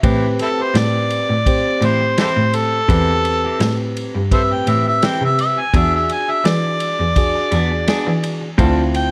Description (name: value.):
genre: straight-eighth soul blues.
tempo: 84 BPM.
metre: 4/4.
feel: swing 54% on 16ths.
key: A dorian.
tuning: A4 = 440 Hz.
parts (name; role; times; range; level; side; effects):
tine electric piano; accompaniment; 0.0-9.1 s; C4 to C5; -25 LUFS; equal; none.
clean electric guitar; stabs; 0.0-9.0 s; E3 to A4; -29 LUFS; equal; none.
clear cello; bass; 0.0-9.1 s; D2 to E3; -22 LUFS; equal; none.
warm soul drum kit; drums; 0.0-9.1 s; kick drum, ride cymbal, snare drum; -24 LUFS; equal; none.
warm harmonica; melody; 0.4-9.1 s; C4 to G#5; -21 LUFS; equal; overdrive.
room: light reverb.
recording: none.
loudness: -17 LUFS.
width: mono.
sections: 0.0-9.1 A section.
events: harmonica solo 0.0-9.1.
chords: 0.0 Am7; 5.7 E7; 8.6 Dm7.